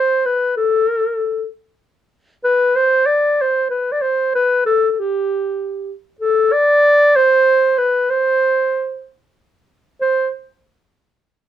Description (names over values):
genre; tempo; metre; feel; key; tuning
klezmer; 95 BPM; 3/4; straight; unclear; A4 = 441 Hz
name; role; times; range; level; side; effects
mellow clarinet; solo; 0.0-10.3 s; G4 to D5; -14 LUFS; equal; none
room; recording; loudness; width
moderate small room ambience, RT60 0.5 s; dark, warm production; -14 LUFS; side -11 dB against mid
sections
0.0-10.0 A section; 10.0-11.5 B section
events
none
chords
none